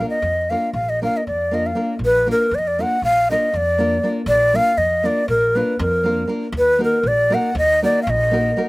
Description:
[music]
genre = balkan folk, Balkan wedding band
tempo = 238 BPM (eighths)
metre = 9/8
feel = straight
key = Bb major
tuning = A4 = 437 Hz
[part]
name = breathy reedy ney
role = melody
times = 0.0-8.6 s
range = Bb4 to Gb5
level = -17 LUFS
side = equal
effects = none
[part]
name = nylon-string guitar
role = accompaniment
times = 0.0-8.7 s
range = Bb3 to Bb4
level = -24 LUFS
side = equal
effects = none
[part]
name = upright bass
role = bass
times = 0.0-8.5 s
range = Bb1 to F2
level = -25 LUFS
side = equal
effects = none
[sound]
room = little or no reverb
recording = recorded outdoors, with no room sound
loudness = -16 LUFS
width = side -22 dB against mid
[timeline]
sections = 0.0-2.0 A section; 2.0-8.7 B section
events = ney solo 0.0-2.0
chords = 0.0 Bb; 6.5 Ebm

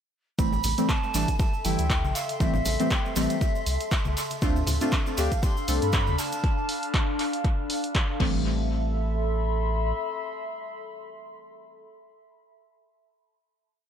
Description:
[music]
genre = deep house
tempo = 119 BPM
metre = 4/4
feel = swing 56% on 16ths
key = A minor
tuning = A4 = 438 Hz
[part]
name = mellow hollow silver concert flute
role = melody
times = 0.4-7.2 s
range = E5 to C6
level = -34 LUFS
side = right 1 dB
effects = dub echo
[part]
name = deep mellow chord stab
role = stabs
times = 0.4-11.9 s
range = E3 to A4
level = -29 LUFS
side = equal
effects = chorus, sidechain pumping, tape echo
[part]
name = warm sub bass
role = bass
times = 0.4-9.9 s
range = G1 to G2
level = -28 LUFS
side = equal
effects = sidechain pumping
[part]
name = electronic kick drum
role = drums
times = 0.4-8.3 s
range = none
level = -26 LUFS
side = equal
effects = overdrive
[part]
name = punchy analog drum machine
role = drums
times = 0.4-8.3 s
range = crash cymbal, handclaps, hi-hat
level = -32 LUFS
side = equal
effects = tape echo
[part]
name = tube shaker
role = percussion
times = 0.4-6.4 s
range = none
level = -38 LUFS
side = right 2 dB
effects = tape echo
[part]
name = warbly tape-like pad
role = texture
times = 1.1-12.3 s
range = D4 to C6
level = -33 LUFS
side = left 1 dB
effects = chorus, built-in reverb, phaser, sidechain pumping
[part]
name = congas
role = percussion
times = 0.5-6.2 s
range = none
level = -37 LUFS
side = left 3 dB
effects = tape echo
[sound]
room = light reverb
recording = echo-heavy mix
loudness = -23 LUFS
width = side -8 dB against mid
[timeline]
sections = 0.4-8.5 drop; 8.5-12.5 final chord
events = drop 0.4-8.5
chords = 0.4 Am7; 4.4 Dm7; 8.2 Am7

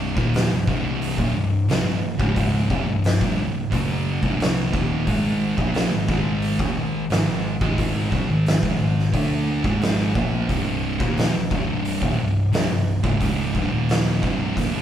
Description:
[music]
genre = stoner and doom metal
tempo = 89 BPM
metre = 4/4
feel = straight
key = C minor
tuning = A4 = 441 Hz
[part]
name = thick fuzz guitar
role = riff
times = 0.0-14.8 s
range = C2 to D4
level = -25 LUFS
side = left 5 dB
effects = distortion
[part]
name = thick fuzz guitar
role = riff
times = 0.0-14.8 s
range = C2 to D4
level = -24 LUFS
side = right 4 dB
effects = distortion
[part]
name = picked electric bass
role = bass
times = 0.0-14.8 s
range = C1 to D2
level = -32 LUFS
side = equal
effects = none
[part]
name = oversized low-tuned drum kit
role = drums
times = 0.2-14.7 s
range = hi-hat, kick drum, snare drum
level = -24 LUFS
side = equal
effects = none
[sound]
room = moderate studio reverb, RT60 0.6 s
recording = band playing live in one room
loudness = -19 LUFS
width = side -10 dB against mid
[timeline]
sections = 0.0-14.8 A section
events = none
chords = 0.0 Cm; 5.1 Ab5; 10.5 Cm

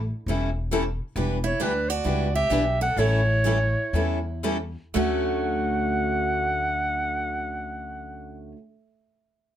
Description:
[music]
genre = acoustic string swing (jazz manouche)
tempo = 115-135 BPM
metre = 4/4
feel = swing 62% on 8ths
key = D major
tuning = A4 = 440 Hz
[part]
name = upright bass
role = bass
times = 0.0-8.5 s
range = E1 to E2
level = -28 LUFS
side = equal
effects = none
[part]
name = picked steel-string acoustic guitar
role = accompaniment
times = 0.3-8.6 s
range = D3 to A4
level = -29 LUFS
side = left 5 dB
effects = none
[part]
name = picked steel-string acoustic guitar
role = accompaniment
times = 0.3-8.6 s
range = D3 to B4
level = -32 LUFS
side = right 6 dB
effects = none
[part]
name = picked steel-string acoustic guitar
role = second line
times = 1.4-8.5 s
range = A3 to A4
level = -33 LUFS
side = right 6 dB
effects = none
[part]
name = warm clarinet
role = melody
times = 1.5-8.5 s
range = B4 to F#5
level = -26 LUFS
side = right 1 dB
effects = none
[sound]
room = moderate studio reverb, RT60 0.5 s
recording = none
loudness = -22 LUFS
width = side -10 dB against mid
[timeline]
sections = 0.0-4.9 A section; 4.9-9.1 B section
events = slowing down 1.2-4.9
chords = 0.0 A7; 1.2 Em9; 3.0 A7; 4.9 Dmaj7

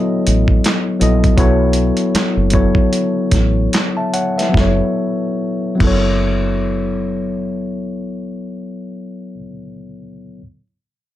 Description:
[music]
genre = R&B, neo-soul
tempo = 71-82 BPM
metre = 4/4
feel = swing 58% on 16ths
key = F# dorian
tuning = A4 = 440 Hz
[part]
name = tine electric piano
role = accompaniment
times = 0.0-10.4 s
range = F#3 to A5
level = -18 LUFS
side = left 2 dB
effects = overdrive
[part]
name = deep dub fingered electric bass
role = bass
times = 0.3-9.4 s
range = F#1 to B1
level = -18 LUFS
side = right 1 dB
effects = none
[part]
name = dusty soul sampler-style drum kit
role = drums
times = 0.3-6.1 s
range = crash cymbal, handclaps, hi-hat, kick drum, snare drum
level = -17 LUFS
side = right 1 dB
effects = none
[sound]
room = light reverb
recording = none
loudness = -14 LUFS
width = side -13 dB against mid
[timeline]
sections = 0.0-4.5 A section; 4.5-7.9 B section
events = slowing down 0.0-4.5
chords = 0.0 F#m7

